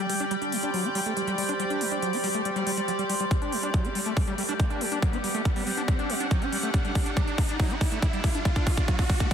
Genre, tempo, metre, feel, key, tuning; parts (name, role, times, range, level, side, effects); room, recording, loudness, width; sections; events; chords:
psychedelic trance; 140 BPM; 4/4; straight; A4 = 440 Hz
overtone-sweeping drone; sustained chords; 0.0-9.3 s; G3 to C5; -32 LUFS; right 2 dB; chorus, built-in reverb, sidechain pumping
screaming distorted acid line; riff; 0.0-9.3 s; F#3 to D4; -32 LUFS; moving between left 4 dB and right 2 dB; distortion, chorus, auto-pan, sidechain pumping, digital delay
riser and reverse cymbal; sound effects; 0.0-9.3 s; -36 LUFS; right 2 dB
rich studio string section; texture; 0.0-9.3 s; G4 to G5; -34 LUFS; left 2 dB; sidechain pumping
electronic hi-hat; drums; 0.1-9.3 s; -34 LUFS; equal
electronic kick drum; drums; 3.3-9.3 s; -25 LUFS; equal
light reverb; dense, heavily limited modern master; -24 LUFS; side -8 dB against mid
0.0-9.3 A section
build-up 0.0-9.3; riser 0.0-9.3; filter sweep on acid bass 0.0-9.3; drum fill 3.3-9.3
0.0 G5